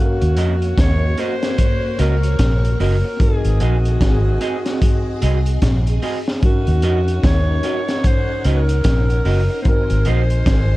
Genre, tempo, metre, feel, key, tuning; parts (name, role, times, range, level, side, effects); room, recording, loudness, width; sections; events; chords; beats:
lovers rock reggae; 74 BPM; 4/4; swing 61% on 16ths; Eb dorian; A4 = 440 Hz
growling alto saxophone; melody; 0.0-10.8 s; Gb4 to Db5; -24 LUFS; equal; tape echo
string machine, violins; second line; 0.0-10.8 s; Bb3 to Ab5; -28 LUFS; left 1 dB; ensemble chorus
tine electric piano; accompaniment; 0.0-10.8 s; Cb4 to F5; -31 LUFS; left 2 dB; medium stereo tremolo
vintage muted fingered electric bass; bass; 0.2-10.8 s; Gb1 to F2; -16 LUFS; equal
crunchy breakbeat drum kit; drums; 0.2-10.7 s; hi-hat, kick drum, snare drum; -19 LUFS; equal
electric guitar through a small old amp; stabs; 0.4-10.2 s; C4 to Eb5; -23 LUFS; right 4 dB
little or no reverb; dark, warm production; -15 LUFS; side -18 dB against mid
0.0-10.8 A section
0.0 Ebm7; 3.2 Ab7; 6.4 Ebm7; 9.7 Ab7
0.78 1.58 2.39 | 3.20 4.00 4.81 5.62 | 6.43 7.23 8.04 8.85 | 9.65 10.46